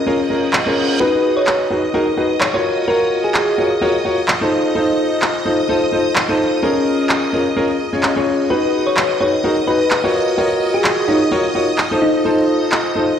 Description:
piano house; 128 BPM; 4/4; swing 56% on 16ths; A4 = 441 Hz
string machine, violins; sustained chords; 0.0-13.2 s; D#5 to D#6; -24 LUFS; right 1 dB; ensemble chorus
clear concert grand piano; riff; 0.1-13.1 s; C#4 to C#5; -16 LUFS; left 1 dB; low-pass filter, dub echo
reverse cymbal; sound effects; 0.2-1.0 s; -25 LUFS; right 4 dB
electronic handclaps; drums; 0.5-12.8 s; -20 LUFS; right 1 dB
thumb-piano-like synth pluck; melody; 1.0-3.7, 8.5-12.4 s; D#4 to C#5; -20 LUFS; left 1 dB; lush chorus, dub echo
moderate plate reverb, RT60 2.2 s; played on a big sound system in a bare room, large studio reverb; -14 LUFS; side -8 dB against mid
0.0-13.2 A section
reverse cymbal 0.2-1.0
0.0 A#m7; 1.0 G#m7; 2.6 F#maj7; 4.5 F7; 6.6 A#m7; 8.5 G#m7; 10.1 F#maj7; 12.0 F7

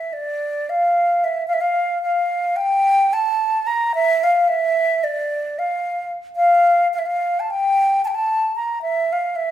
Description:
balkan folk; free time; A4 = 440 Hz
hollow wooden flute; solo; 0.0-9.5 s; D5 to Bb5; -17 LUFS; equal
wet large studio reverb, RT60 1.1 s; band playing live in one room; -17 LUFS; side -11 dB against mid
0.0-9.5 A section

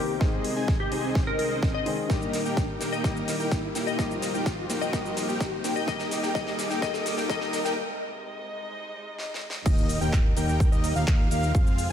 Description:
EDM, festival progressive house; 127 BPM; 4/4; straight; Eb major; A4 = 440 Hz
glassy wavetable pluck; melody; 0.0-7.5 s; G4 to Eb5; -33 LUFS; left 4 dB; chorus, ping-pong delay
dark grand piano; accompaniment; 0.0-7.8 s; Eb3 to Ab4; -34 LUFS; left 5 dB; sidechain pumping, ping-pong delay
muted studio string section; sustained chords; 0.0-11.9 s; C2 to D6; -38 LUFS; right 1 dB; sidechain pumping
riser and impact; sound effects; 0.0-11.5 s; -36 LUFS; equal
wide unison lead; arpeggios; 0.2-11.9 s; Eb5 to Ab5; -35 LUFS; equal; sidechain pumping, ping-pong delay
dense compressed supersaw; riff; 0.2-11.9 s; Bb3 to Ab5; -32 LUFS; equal; sidechain pumping, low-pass filter, ping-pong delay
big-room dance drum kit; drums; 0.2-11.9 s; crash cymbal, handclaps, hi-hat, shaker, snare drum; -35 LUFS; left 1 dB; high-pass filter on snare, high-pass filter on hats, high-pass filter on perc, high-pass filter on cymbals
electronic kick drum; drums; 0.2-11.6 s; -25 LUFS; equal
fat analog bass; bass; 9.7-11.9 s; Eb2 to F2; -28 LUFS; equal; sidechain pumping
light reverb; high-pass filter; -24 LUFS; side -9 dB against mid
0.0-9.7 A section; 9.7-11.9 B section
build-up 0.0-9.7; drum fill 0.0-7.8, 9.2-9.7; riser 0.0-7.8; filter sweep on supersaw synth 0.0-9.7; filter sweep on analog synth lead 0.0-9.7; filter sweep 0.0-9.7; break 7.8-9.7; drop 9.7-11.9; impact 9.7-11.5
0.2 Ab/C; 2.1 Eb; 4.0 F5; 5.9 Cm7; 7.8 Ab/C; 9.7 Eb

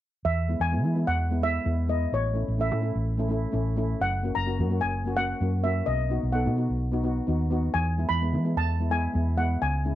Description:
calypso; 128 BPM; 4/4; straight; E major; A4 = 440 Hz
steel pan; melody; 0.2-9.9 s; C#5 to B5; -29 LUFS; equal
hollow-body short-scale fingered electric bass; bass; 0.2-9.9 s; F#1 to E3; -26 LUFS; equal
steel pan; accompaniment; 0.5-9.9 s; G#3 to A4; -30 LUFS; left 1 dB
light reverb; dry, close 1970s-style studio recording; -24 LUFS; side -13 dB against mid
0.2-9.9 A section
0.2 E; 2.1 A; 4.0 F#; 5.9 B; 7.7 E

